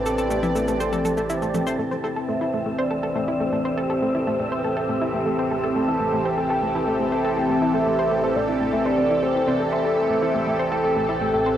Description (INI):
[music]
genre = ambient, sequencer-driven space music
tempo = 121 BPM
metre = 4/4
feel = straight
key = A minor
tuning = A4 = 440 Hz
[part]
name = soft octave-layered synth lead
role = melody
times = 0.0-11.6 s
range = A4 to A5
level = -26 LUFS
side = equal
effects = chorus, phaser, cassette tape, shimmer reverb, tape echo
[part]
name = lush unison pad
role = sustained chords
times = 0.0-11.6 s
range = E3 to D5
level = -23 LUFS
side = equal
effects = chorus, phaser, cassette tape, shimmer reverb
[part]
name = analog pluck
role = riff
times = 0.0-11.6 s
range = A3 to C5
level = -27 LUFS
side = equal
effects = chorus, cassette tape, shimmer reverb, tape echo
[part]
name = analog drone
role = bass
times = 0.0-11.6 s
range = A1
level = -39 LUFS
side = equal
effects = chorus
[part]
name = wind-like tuned noise texture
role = texture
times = 0.0-11.6 s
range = E5 to A5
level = -34 LUFS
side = left 1 dB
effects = built-in reverb, cassette tape, shimmer reverb
[part]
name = electronic shaker and toms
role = percussion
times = 0.1-1.8 s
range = none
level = -30 LUFS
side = left 2 dB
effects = cassette tape, tape echo
[part]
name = vibraphone with medium mallets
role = arpeggios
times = 9.7-11.6 s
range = A4 to C5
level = -26 LUFS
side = equal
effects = auto-pan, cassette tape, tape echo
[sound]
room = wet small room reverb, RT60 0.5 s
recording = home recording on cassette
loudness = -20 LUFS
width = side -10 dB against mid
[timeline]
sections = 0.0-1.8 A section; 1.8-11.6 B section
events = fade-in on synth drone 1.8-11.6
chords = 0.0 Am7